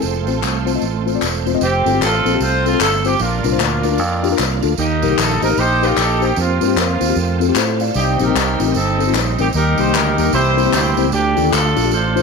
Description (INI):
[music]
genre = uptempo gospel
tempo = 151 BPM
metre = 4/4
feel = swing 62% on 8ths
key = unclear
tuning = A4 = 440 Hz
[part]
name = clear grand piano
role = melody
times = 0.0-1.4 s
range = A4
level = -31 LUFS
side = equal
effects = none
[part]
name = mellow tine electric piano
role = accompaniment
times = 0.0-12.2 s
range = Bb2 to F5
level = -20 LUFS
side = left 12 dB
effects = slow stereo tremolo
[part]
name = bright tonewheel organ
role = sustained chords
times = 0.0-12.2 s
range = E3 to C5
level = -25 LUFS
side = right 13 dB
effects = slow rotary speaker, overdrive, chorus vibrato
[part]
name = warm symphonic string section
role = sustained chords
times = 0.0-1.6 s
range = A3 to A4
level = -29 LUFS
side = right 12 dB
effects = none
[part]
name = fingered electric bass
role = bass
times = 0.0-12.2 s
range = E1 to A2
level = -20 LUFS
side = right 2 dB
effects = none
[part]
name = tambourine and handclaps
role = percussion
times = 0.0-12.2 s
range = none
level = -23 LUFS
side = left 5 dB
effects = none
[part]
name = warm horn section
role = melody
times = 1.6-12.2 s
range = Bb3 to C5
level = -18 LUFS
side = right 1 dB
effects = none
[sound]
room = moderate echo chamber reverb, RT60 1.8 s, small room ambience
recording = 1960s-style stereo with parts hard left and right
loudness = -14 LUFS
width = side -4 dB against mid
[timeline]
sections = 0.0-1.6 A section; 1.6-12.2 B section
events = none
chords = 0.0 F; 3.2 Bb; 4.8 Eb; 6.4 Fsus4; 7.2 F; 8.0 Cm; 9.5 Eb; 10.3 C7; 11.1 Dm